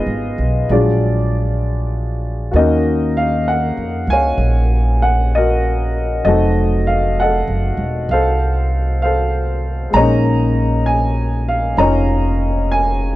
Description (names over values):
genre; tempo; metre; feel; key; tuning
jazz ballad; 65 BPM; 4/4; swing 66% on 8ths; Bb minor; A4 = 437 Hz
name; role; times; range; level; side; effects
warm upright piano; accompaniment; 0.0-13.2 s; Gb3 to Bb5; -17 LUFS; left 1 dB; none
upright bass; bass; 0.0-13.2 s; E1 to F2; -17 LUFS; equal; none
room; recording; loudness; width
small room ambience; dry, close 1970s-style studio recording; -14 LUFS; side -16 dB against mid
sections
0.0-13.2 A section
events
none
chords
0.0 Fm7b5; 0.7 Bb7b13; 2.5 Ebm9; 6.2 F7b9; 9.9 Bbm11